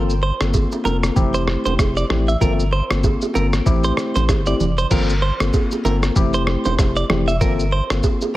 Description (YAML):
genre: afrobeats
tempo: 96 BPM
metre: 4/4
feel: swing 58% on 16ths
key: G dorian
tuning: A4 = 440 Hz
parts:
  - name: tine electric piano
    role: accompaniment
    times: 0.0-8.4 s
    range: A3 to A4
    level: -23 LUFS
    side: left 3 dB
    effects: overdrive, phaser
  - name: direct-recorded clean electric guitar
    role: riff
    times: 0.0-7.8 s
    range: Bb4 to E5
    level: -25 LUFS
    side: right 4 dB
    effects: spring reverb, tape echo
  - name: warm sub bass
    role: bass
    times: 0.0-8.0 s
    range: E1 to A1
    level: -21 LUFS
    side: equal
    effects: none
  - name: lo-fi sampler-style drum kit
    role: drums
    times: 0.1-8.3 s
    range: crash cymbal, kick drum, rim click, shaker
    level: -20 LUFS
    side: equal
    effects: none
  - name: bongos and congas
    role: percussion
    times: 0.5-8.3 s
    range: none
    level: -26 LUFS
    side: right 5 dB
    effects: none
room: little or no reverb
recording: heavily compressed radio sound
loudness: -16 LUFS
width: side -16 dB against mid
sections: 0.0-4.9 A section; 4.9-8.4 B section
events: none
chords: 0.0 Gm11; 1.2 Fmaj7; 2.4 Gm11; 3.7 Am7; 4.9 Gm11; 6.2 Fmaj7; 7.4 Gm11